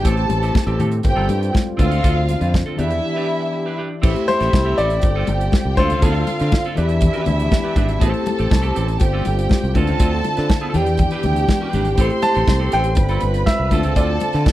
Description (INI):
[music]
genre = disco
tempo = 121 BPM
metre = 4/4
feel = straight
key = A minor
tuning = A4 = 440 Hz
[part]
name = warm studio violin section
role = second line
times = 0.0-14.5 s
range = E4 to C6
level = -25 LUFS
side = right 2 dB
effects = none
[part]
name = clean electric guitar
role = accompaniment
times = 0.0-14.5 s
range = C4 to B4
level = -29 LUFS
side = right 4 dB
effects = spring reverb
[part]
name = mellow tine electric piano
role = accompaniment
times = 0.0-14.5 s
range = D3 to D5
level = -26 LUFS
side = left 5 dB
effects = none
[part]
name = dark French horn section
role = sustained chords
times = 0.0-14.5 s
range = D3 to G4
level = -27 LUFS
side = right 1 dB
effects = none
[part]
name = fingered electric bass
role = bass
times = 0.0-14.4 s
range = G1 to D3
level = -20 LUFS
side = equal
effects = none
[part]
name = modern studio drum kit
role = drums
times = 0.0-14.5 s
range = crash cymbal, hi-hat, kick drum, snare drum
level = -18 LUFS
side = equal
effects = none
[part]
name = congas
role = percussion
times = 0.0-14.5 s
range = none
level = -26 LUFS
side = left 4 dB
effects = none
[part]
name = clear baby grand piano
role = melody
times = 4.3-7.5, 12.2-14.5 s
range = A4 to A5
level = -22 LUFS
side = equal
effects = none
[sound]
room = little or no reverb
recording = dry, close 1970s-style studio recording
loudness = -16 LUFS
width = side -14 dB against mid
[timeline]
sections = 0.0-4.0 A section; 4.0-14.5 B section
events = break 3.0-4.0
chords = 0.1 Am7; 1.0 G9sus4; 1.8 Dm7; 2.8 Em7; 4.0 Am7; 5.0 G9sus4; 5.8 Dm7; 6.8 Em7; 8.0 Am7; 9.0 G9sus4; 9.7 Dm7; 10.7 Em7; 12.0 Am7; 13.0 G9sus4; 13.7 Dm7